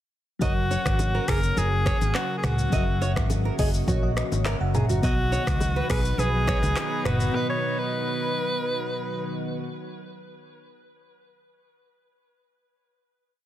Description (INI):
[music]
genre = afrobeats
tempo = 104 BPM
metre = 4/4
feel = straight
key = B major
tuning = A4 = 440 Hz
[part]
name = edgy alto saxophone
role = melody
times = 0.4-9.4 s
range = F#4 to C#5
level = -29 LUFS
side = equal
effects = tape echo
[part]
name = bell-like FM electric piano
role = accompaniment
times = 0.4-9.7 s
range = B2 to A#5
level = -34 LUFS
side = left 1 dB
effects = chorus, phaser
[part]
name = lush unison pad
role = sustained chords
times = 0.8-9.6 s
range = C#3 to F#4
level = -34 LUFS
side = equal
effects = chorus
[part]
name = nylon-string guitar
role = riff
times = 0.4-7.2 s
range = F#4 to D#5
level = -34 LUFS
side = right 5 dB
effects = tape echo
[part]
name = fingered electric bass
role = bass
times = 0.4-7.3 s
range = F#1 to C#2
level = -26 LUFS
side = equal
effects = none
[part]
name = afro-pop drum kit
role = drums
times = 0.4-7.3 s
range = finger snaps, handclaps, hi-hat, kick drum, rim click, shaker, toms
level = -27 LUFS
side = equal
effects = overdrive
[part]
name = congas and bongos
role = percussion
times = 0.4-7.2 s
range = none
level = -35 LUFS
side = left 2 dB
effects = none
[part]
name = mellow horn section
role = second line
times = 6.2-9.3 s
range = F#3 to B4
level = -34 LUFS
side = left 1 dB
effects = none
[sound]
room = small room reverb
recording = dense, heavily limited modern master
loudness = -22 LUFS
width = side -12 dB against mid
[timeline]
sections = 0.4-9.6 chorus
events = FM electric piano fill 3.3-5.0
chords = 0.4 F#; 5.0 B